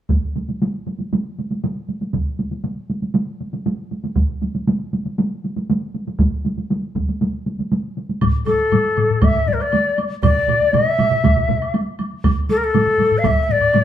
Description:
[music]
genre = japanese traditional, taiko drum ensemble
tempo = 119 BPM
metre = 4/4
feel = straight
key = A miyako bushi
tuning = A4 = 440 Hz
[part]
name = taiko ensemble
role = percussion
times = 0.1-13.8 s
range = none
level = -22 LUFS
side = right 2 dB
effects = none
[part]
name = taiko ensemble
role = percussion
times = 0.1-13.4 s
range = none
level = -21 LUFS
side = right 1 dB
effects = none
[part]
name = taiko ensemble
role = percussion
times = 8.2-9.6, 12.7-13.8 s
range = none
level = -22 LUFS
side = left 6 dB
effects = none
[part]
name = woodblock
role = percussion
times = 8.2-13.8 s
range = none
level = -31 LUFS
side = right 1 dB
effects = none
[part]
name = bright reedy shakuhachi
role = melody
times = 8.5-13.8 s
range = A4 to F5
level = -17 LUFS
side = left 2 dB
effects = none
[part]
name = taiko ensemble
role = percussion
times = 10.2-11.6 s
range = none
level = -22 LUFS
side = right 6 dB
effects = none
[sound]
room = wet large studio reverb, RT60 0.9 s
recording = band playing live in one room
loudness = -17 LUFS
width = side -10 dB against mid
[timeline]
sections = 0.1-8.2 A section; 8.2-13.8 B section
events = none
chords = none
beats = | 0.11 0.61 1.12 1.63 | 2.14 2.65 3.15 3.66 | 4.17 4.68 5.18 5.69 | 6.20 6.70 7.21 7.71 | 8.22 8.72 9.23 9.73 | 10.23 10.74 11.24 11.74 | 12.24 12.74 13.24 13.74

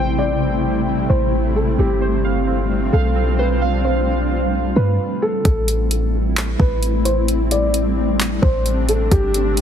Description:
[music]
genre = hip hop, atmospheric cloud-rap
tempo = 131 BPM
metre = 4/4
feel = half-time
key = A minor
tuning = A4 = 440 Hz
[part]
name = granular cloud pad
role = sustained chords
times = 0.0-9.6 s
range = C3 to F4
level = -21 LUFS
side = left 1 dB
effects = built-in reverb, sidechain pumping
[part]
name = warbly lo-fi synth keys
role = arpeggios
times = 0.0-5.0 s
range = C4 to G5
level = -26 LUFS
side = right 3 dB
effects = chorus, low-pass filter, ping-pong delay
[part]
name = clean 808-style bass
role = bass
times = 0.0-9.6 s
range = G1 to G2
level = -20 LUFS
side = equal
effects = none
[part]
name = felt-muted upright piano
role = melody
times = 0.2-9.6 s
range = G4 to D5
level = -23 LUFS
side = equal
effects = low-pass filter, ping-pong delay
[part]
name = smooth R&B drum kit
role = drums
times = 5.5-9.6 s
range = handclaps, hi-hat, kick drum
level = -20 LUFS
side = equal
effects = overdrive
[sound]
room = little or no reverb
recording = heavily compressed radio sound, multiband compression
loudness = -16 LUFS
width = side -8 dB against mid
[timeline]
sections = 0.0-5.5 A section; 5.5-9.6 B section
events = stop 5.0-5.5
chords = 0.0 Am7; 1.8 G9sus4; 5.5 Am7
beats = 0.41 0.87 1.33 | 1.79 2.25 2.70 3.16 | 3.62 4.08 4.54 4.99 | 5.45 5.91 6.37 6.83 | 7.28 7.74 8.20 8.66 | 9.12 9.57

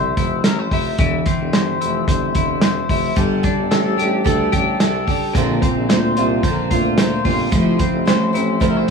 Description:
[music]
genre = jangly indie pop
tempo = 110 BPM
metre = 4/4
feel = straight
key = F major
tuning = A4 = 436 Hz
[part]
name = twelve-string electric guitar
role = arpeggios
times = 0.0-8.9 s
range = Bb2 to C5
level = -20 LUFS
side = left 6 dB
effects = wide subtle chorus, analog delay
[part]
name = clear tuba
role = bass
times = 0.0-8.8 s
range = E1 to F2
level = -24 LUFS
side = right 1 dB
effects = none
[part]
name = loose indie drum kit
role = drums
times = 0.2-8.7 s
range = hi-hat, kick drum, snare drum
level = -19 LUFS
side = right 1 dB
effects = none
[part]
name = fingerpicked twelve-string acoustic guitar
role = accompaniment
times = 3.2-8.9 s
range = Bb2 to C5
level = -20 LUFS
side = right 6 dB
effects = none
[sound]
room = light reverb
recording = small room ambience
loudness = -15 LUFS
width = side -5 dB against mid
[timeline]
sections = 0.0-8.9 A section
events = none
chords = 0.0 Fmaj7; 1.0 C/E; 3.2 Gsus2; 5.4 Bbadd9; 7.5 Fmaj7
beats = 0.45 | 0.99 1.54 2.08 2.63 | 3.17 3.72 4.26 4.81 | 5.35 5.90 6.44 6.98 | 7.53 8.07 8.62

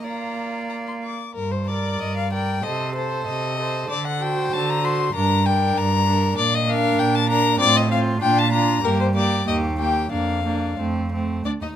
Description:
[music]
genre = quick classical-period movement for string quartet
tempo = 89-99 BPM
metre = 2/4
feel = rubato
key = G minor, Bb major from 6.4 s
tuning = A4 = 439 Hz
[part]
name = rich violin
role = melody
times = 0.0-11.7 s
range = Bb4 to D6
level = -22 LUFS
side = left 6 dB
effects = none
[part]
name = warm violin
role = second line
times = 0.0-11.8 s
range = C4 to D5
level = -29 LUFS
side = left 1 dB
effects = none
[part]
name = warm viola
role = accompaniment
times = 0.0-11.4 s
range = A3 to Bb4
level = -27 LUFS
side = right 4 dB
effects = none
[part]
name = rich cello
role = bass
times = 0.0-11.7 s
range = D2 to F4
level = -24 LUFS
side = right 2 dB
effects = none
[sound]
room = light reverb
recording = close, detailed microphones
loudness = -19 LUFS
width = side -10 dB against mid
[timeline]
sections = 0.0-1.4 A section; 1.4-11.5 B section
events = none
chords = 0.0 Bb; 1.4 Gm; 2.7 Adim/C; 3.9 D7; 5.1 Gm; 6.4 Bb; 7.6 F/A; 8.2 Bb; 8.8 Gm; 9.5 Eb; 10.1 Bb/F; 10.8 F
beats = | 0.04 0.71 | 1.37 2.01 | 2.65 3.28 | 3.90 4.53 | 5.15 5.77 | 6.38 6.99 | 7.60 8.22 | 8.84 9.47 | 10.12 10.79 | 11.46

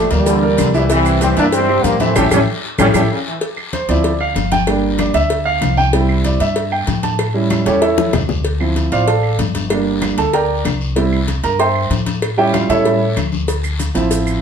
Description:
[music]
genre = latin, salsa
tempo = 191 BPM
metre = 4/4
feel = straight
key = D minor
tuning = A4 = 440 Hz
[part]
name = warm trombone section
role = melody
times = 0.0-3.0 s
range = E3 to D4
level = -16 LUFS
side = right 1 dB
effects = plate reverb
[part]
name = warm upright piano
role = accompaniment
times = 0.0-14.4 s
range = E3 to C6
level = -16 LUFS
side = right 3 dB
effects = none
[part]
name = upright bass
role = bass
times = 0.0-14.4 s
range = G1 to A2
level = -19 LUFS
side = left 1 dB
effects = none
[part]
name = congas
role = percussion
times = 0.1-14.4 s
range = none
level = -23 LUFS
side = left 5 dB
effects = none
[part]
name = cowbell and bongos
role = percussion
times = 0.1-14.3 s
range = none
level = -24 LUFS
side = left 3 dB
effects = none
[part]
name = guiro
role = percussion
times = 0.1-14.4 s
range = none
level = -31 LUFS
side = left 5 dB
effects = none
[part]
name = maracas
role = percussion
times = 0.1-3.0, 13.5-14.4 s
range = none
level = -31 LUFS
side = right 5 dB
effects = none
[part]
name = bright trombone section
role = second line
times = 0.3-3.3 s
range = C3 to F3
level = -23 LUFS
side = left 3 dB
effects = none
[part]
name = claves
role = percussion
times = 0.6-14.4 s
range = none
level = -30 LUFS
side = right 3 dB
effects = none
[sound]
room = wet studio reverb, RT60 0.7 s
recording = heard from further back in the room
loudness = -13 LUFS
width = side -7 dB against mid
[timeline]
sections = 0.0-3.4 A section; 3.4-14.4 B section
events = band accent 2.2-3.4; drum fill 2.8-3.4, 8.0-8.4; upright piano solo 3.4-14.4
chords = 0.0 Gm; 0.9 C; 2.2 A7; 3.4 Dm7; 4.7 Gm; 5.9 C; 7.2 A7; 8.4 Dm7; 9.7 Gm; 11.0 C; 12.2 A7; 13.5 Dm7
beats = 0.27 0.58 | 0.90 1.21 1.53 1.84 | 2.16 2.47 2.79 3.10 | 3.42 3.73 4.04 4.36 | 4.67 4.99 5.30 5.62 | 5.93 6.25 6.56 6.88 | 7.19 7.50 7.82 8.13 | 8.45 8.76 9.08 9.39 | 9.71 10.02 10.34 10.65 | 10.96 11.28 11.60 11.91 | 12.22 12.54 12.85 13.17 | 13.48 13.80 14.11

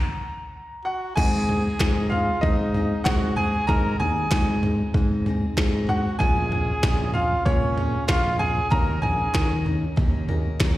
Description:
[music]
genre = indie folk with a building arrangement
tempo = 95 BPM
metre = 4/4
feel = straight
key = unclear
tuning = A4 = 441 Hz
[part]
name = bright upright piano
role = melody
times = 0.0-9.6 s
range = Db5 to Bb5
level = -27 LUFS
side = equal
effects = slapback echo, tape echo
[part]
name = warm trumpet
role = second line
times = 0.8-9.6 s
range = Db4 to Bb4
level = -30 LUFS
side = right 1 dB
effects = slapback echo
[part]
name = clear upright piano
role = accompaniment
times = 1.2-10.8 s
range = Ab1 to Eb5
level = -40 LUFS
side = right 2 dB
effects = none
[part]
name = picked steel-string acoustic guitar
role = accompaniment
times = 1.2-10.8 s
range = Ab2 to Bb4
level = -34 LUFS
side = left 6 dB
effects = slapback echo
[part]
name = picked electric bass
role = bass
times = 1.2-10.8 s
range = Bb1 to Eb3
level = -25 LUFS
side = equal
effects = none
[part]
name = glitchy drum kit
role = drums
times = 1.2-10.8 s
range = crash cymbal, kick drum, snare drum, toms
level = -24 LUFS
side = equal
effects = none
[part]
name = group handclap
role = percussion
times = 1.8-10.8 s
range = none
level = -36 LUFS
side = right 1 dB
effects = slapback echo
[sound]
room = small room ambience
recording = live gig heard through the venue's PA, recital hall reverb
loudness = -20 LUFS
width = side -16 dB against mid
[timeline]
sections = 0.0-1.2 A section; 1.2-10.8 B section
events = stop 0.0-1.2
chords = 0.0 Ebm (rootless); 1.2 Ab; 6.2 Bbm7; 8.7 Ebm7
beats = 0.54 | 1.17 1.80 2.43 3.06 | 3.69 4.32 4.95 5.58 | 6.21 6.83 7.46 8.09 | 8.72 9.35 9.98 10.61

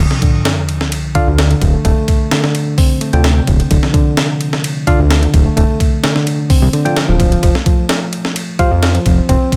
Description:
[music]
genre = breakbeat, breaks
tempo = 129 BPM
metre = 4/4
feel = straight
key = D minor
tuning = A4 = 440 Hz
[part]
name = reed electric piano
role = riff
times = 0.0-9.6 s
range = C3 to C4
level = -19 LUFS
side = equal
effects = vintage 12-bit sampler grit, dub echo
[part]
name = fat analog bass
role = bass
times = 0.0-9.4 s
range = D1 to F2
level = -16 LUFS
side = equal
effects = none
[part]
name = sub drop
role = sound effects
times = 0.0-1.8 s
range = none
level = -23 LUFS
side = equal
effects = none
[part]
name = breakbeat sampler-style drum kit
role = drums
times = 0.1-9.6 s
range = hi-hat, kick drum, ride cymbal, snare drum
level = -17 LUFS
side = equal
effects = none
[part]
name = tine electric piano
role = stabs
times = 1.2-8.7 s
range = F4 to G5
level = -23 LUFS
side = equal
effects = dub echo
[sound]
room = little or no reverb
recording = echo-heavy mix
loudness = -13 LUFS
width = mono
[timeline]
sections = 0.0-9.6 A section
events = drop 0.0-9.6; impact 0.0-1.8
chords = 0.0 Dm; 7.4 F5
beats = 0.45 0.92 1.38 | 1.85 2.31 2.78 3.24 | 3.71 4.17 4.64 5.10 | 5.57 6.03 6.50 6.96 | 7.43 7.89 8.36 8.82 | 9.29

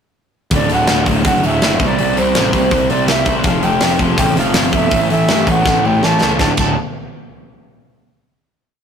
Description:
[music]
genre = punk rock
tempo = 163 BPM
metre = 4/4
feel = straight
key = unclear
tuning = A4 = 439 Hz
[part]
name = distorted electric guitar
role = riff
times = 0.5-6.7 s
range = D2 to C4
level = -20 LUFS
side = left 5 dB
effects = distortion
[part]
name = overdriven semi-hollow guitar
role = riff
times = 0.5-6.7 s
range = D2 to C4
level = -20 LUFS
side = right 6 dB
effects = none
[part]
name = fuzz picked electric bass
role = bass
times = 0.5-6.8 s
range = D1 to G2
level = -19 LUFS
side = left 1 dB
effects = overdrive
[part]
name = tight metal drum kit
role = drums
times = 0.5-6.7 s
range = crash cymbal, hi-hat, kick drum, snare drum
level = -18 LUFS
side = equal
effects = none
[part]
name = breathy mellow tenor recorder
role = melody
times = 0.6-6.8 s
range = C5 to A5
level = -18 LUFS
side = right 2 dB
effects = none
[sound]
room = light reverb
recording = rough rehearsal-room recording, tube saturation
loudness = -12 LUFS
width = side -7 dB against mid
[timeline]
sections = 0.5-6.4 verse; 6.4-7.9 final chord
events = drum fill 5.7-6.4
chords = 0.5 D; 1.8 C5; 3.4 F5; 4.9 A5; 6.4 D5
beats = | 0.52 0.88 1.25 1.61 | 1.98 2.35 2.71 3.08 | 3.45 3.82 4.18 4.55 | 4.92 5.29 5.66 6.03 | 6.40

